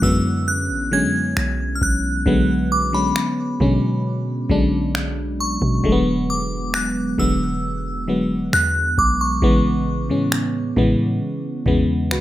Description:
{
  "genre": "contemporary R&B",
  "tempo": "67 BPM",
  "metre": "4/4",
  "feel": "straight",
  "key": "B dorian",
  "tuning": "A4 = 439 Hz",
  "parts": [
    { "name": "glassy synth bell", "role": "melody", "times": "0.0-11.8 s", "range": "B5 to G#6", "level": "-23 LUFS", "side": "equal", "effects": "chorus, phaser, ping-pong delay" },
    { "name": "FM electric piano", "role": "accompaniment", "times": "0.0-12.2 s", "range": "C#3 to B4", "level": "-20 LUFS", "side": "equal", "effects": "chorus" },
    { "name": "warm 808-style bass", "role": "bass", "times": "0.0-12.2 s", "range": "E1 to B2", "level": "-24 LUFS", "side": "equal", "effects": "none" },
    { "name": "booming analog drum machine", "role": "drums", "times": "0.0-12.2 s", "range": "finger snaps, kick drum", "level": "-23 LUFS", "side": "equal", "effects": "none" },
    { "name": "impact", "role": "sound effects", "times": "0.0-2.3 s", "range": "none", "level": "barely audible", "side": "none", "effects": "none" }
  ],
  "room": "light reverb",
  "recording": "rough home demo mix",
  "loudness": "-17 LUFS",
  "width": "side -14 dB against mid",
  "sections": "0.0-12.2 A section",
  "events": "impact 0.0-2.3",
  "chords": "0.0 Bm69; 5.8 E9; 9.4 Amaj9",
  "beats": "0.47 1.36 | 2.26 3.15 4.05 4.94 | 5.84 6.74 7.63 8.53 | 9.42 10.32 11.21 12.11"
}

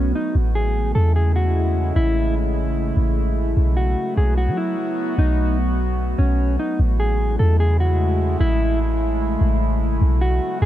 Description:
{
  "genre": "hip hop, atmospheric cloud-rap",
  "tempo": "149 BPM",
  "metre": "4/4",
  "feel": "half-time",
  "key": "A major",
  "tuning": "A4 = 439 Hz",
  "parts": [
    { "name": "mellow electric guitar", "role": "melody", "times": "0.0-10.7 s", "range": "C#4 to A4", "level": "-26 LUFS", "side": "equal", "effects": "tape echo" },
    { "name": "warbly tape-like pad", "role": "sustained chords", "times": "0.0-10.7 s", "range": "C#3 to F#4", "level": "-24 LUFS", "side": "equal", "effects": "chorus, built-in reverb" },
    { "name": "clean 808-style bass", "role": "bass", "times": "0.0-10.7 s", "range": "A1 to F#3", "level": "-18 LUFS", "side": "equal", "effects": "none" }
  ],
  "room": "digital ambience",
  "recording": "dark, warm production",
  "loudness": "-17 LUFS",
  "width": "side -13 dB against mid",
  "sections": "0.0-6.8 A section; 6.8-10.7 B section",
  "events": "none",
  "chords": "0.3 Amaj7; 3.6 B7(no3); 6.8 Amaj7; 10.0 B7(no3)",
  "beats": "| 0.35 0.75 1.16 1.56 | 1.96 2.36 2.77 3.17 | 3.57 3.97 4.38 4.78 | 5.18 5.58 5.99 6.39 | 6.79 7.20 7.60 8.00 | 8.40 8.81 9.21 9.61 | 10.01 10.42"
}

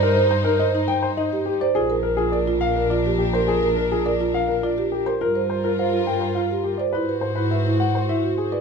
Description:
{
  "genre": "classical, minimalist pattern music",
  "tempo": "104 BPM",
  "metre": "3/4",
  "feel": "straight",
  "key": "unclear",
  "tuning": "A4 = 440 Hz",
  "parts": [
    { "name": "warm baby grand piano", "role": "melody", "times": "0.0-8.6 s", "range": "G4 to G5", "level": "-24 LUFS", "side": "left 6 dB", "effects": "none" },
    { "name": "dark chamber string section", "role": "sustained chords", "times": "0.0-8.5 s", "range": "D4 to C5", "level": "-28 LUFS", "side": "left 4 dB", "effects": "none" },
    { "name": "marimba with soft mallets", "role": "arpeggios", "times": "0.0-8.6 s", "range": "Eb4 to C5", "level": "-23 LUFS", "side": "right 5 dB", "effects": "none" },
    { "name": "rich chamber double bass section", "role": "bass", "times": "0.0-8.5 s", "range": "Bb1 to Ab2", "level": "-26 LUFS", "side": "right 1 dB", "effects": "none" }
  ],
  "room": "light reverb",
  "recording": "minimal, uncompressed stereo recording",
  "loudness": "-19 LUFS",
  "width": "side -5 dB against mid",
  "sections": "0.0-8.6 A section",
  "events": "none",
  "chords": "0.0 Eb6/G; 1.8 Bb7; 5.2 Gm7; 6.9 Ab7alt",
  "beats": "| 0.02 0.60 1.18 | 1.75 2.33 2.91 | 3.48 4.06 4.64 | 5.21 5.79 6.37 | 6.95 7.52 8.10"
}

